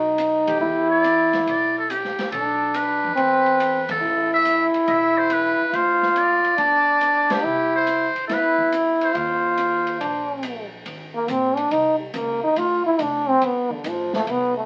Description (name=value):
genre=jazz, small-group swing and bop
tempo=141 BPM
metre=4/4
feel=swing 68% on 8ths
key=unclear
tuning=A4 = 440 Hz
part: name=trumpet with metal mute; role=melody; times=0.0-10.4 s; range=G4 to E5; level=-24 LUFS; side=equal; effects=none
part: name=clear trombone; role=second line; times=0.0-14.7 s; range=D3 to F4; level=-22 LUFS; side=equal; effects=none
part: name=upright bass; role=bass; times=0.0-14.7 s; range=E1 to F2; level=-42 LUFS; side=equal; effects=none
part: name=open jazz drum kit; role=drums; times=0.2-14.4 s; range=hi-hat, kick drum, ride cymbal, snare drum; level=-36 LUFS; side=equal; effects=none
room=moderate studio reverb, RT60 0.6 s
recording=very old 78 rpm record, vinyl crackle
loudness=-21 LUFS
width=mono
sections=0.0-10.9 A section; 10.9-14.7 B section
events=band accent 0.4, 3.8, 7.2; trombone solo 10.9-14.7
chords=0.0 B; 0.6 Em7; 2.3 Bm7b5; 3.2 E5; 4.0 Asus2; 5.7 Dm7; 6.6 G5; 7.4 Cmaj7; 9.1 Ebsus2; 10.9 Abadd9; 12.6 Dm; 13.4 Gsus2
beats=0.19 | 0.61 1.04 1.47 1.90 | 2.32 2.75 3.17 3.60 | 4.03 4.46 4.88 5.31 | 5.74 6.16 6.59 7.01 | 7.44 7.87 8.29 8.72 | 9.15 9.58 10.00 10.43 | 10.86 11.28 11.71 12.14 | 12.56 12.99 13.41 13.84 | 14.27